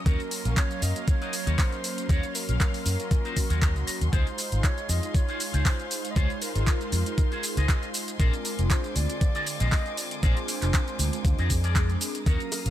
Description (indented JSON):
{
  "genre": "nu-disco, nu disco",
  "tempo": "118 BPM",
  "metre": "4/4",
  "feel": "swing 55% on 16ths",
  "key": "unclear",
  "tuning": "A4 = 441 Hz",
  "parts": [
    { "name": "mellow synth brass", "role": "accompaniment", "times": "0.0-12.7 s", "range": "D3 to F5", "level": "-34 LUFS", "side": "right 1 dB", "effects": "chorus, phaser" },
    { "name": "rich studio violin section", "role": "sustained chords", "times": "0.0-12.7 s", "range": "Ab4 to Eb6", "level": "-40 LUFS", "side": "left 3 dB", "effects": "vintage 12-bit sampler grit, sidechain pumping" },
    { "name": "electric guitar with an envelope filter", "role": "riff", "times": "0.0-12.6 s", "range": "Db4 to Bb5", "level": "-36 LUFS", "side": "left 3 dB", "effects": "wide subtle chorus" },
    { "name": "mellow hollow silver concert flute", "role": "melody", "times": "0.1-12.7 s", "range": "Bb4 to Eb5", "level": "-38 LUFS", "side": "right 2 dB", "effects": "ping-pong delay" },
    { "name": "fingered electric bass with an envelope filter", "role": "bass", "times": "0.1-12.7 s", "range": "F1 to Gb2", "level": "-26 LUFS", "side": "equal", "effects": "none" },
    { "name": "electronic kick drum", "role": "drums", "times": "0.1-12.4 s", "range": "none", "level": "-24 LUFS", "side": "equal", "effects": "overdrive" },
    { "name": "pop drum kit", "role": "drums", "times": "0.1-12.7 s", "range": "handclaps, hi-hat, shaker", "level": "-32 LUFS", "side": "right 1 dB", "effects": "overdrive" },
    { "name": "bongos", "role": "percussion", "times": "12.5-12.6 s", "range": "none", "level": "-38 LUFS", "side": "right 1 dB", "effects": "none" }
  ],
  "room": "little or no reverb",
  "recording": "none",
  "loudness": "-24 LUFS",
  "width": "side -12 dB against mid",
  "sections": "0.0-12.7 A section",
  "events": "clean electric guitar fill 3.4-4.1",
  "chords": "0.0 Ebm7; 4.1 Dbmaj7; 8.2 Bb9"
}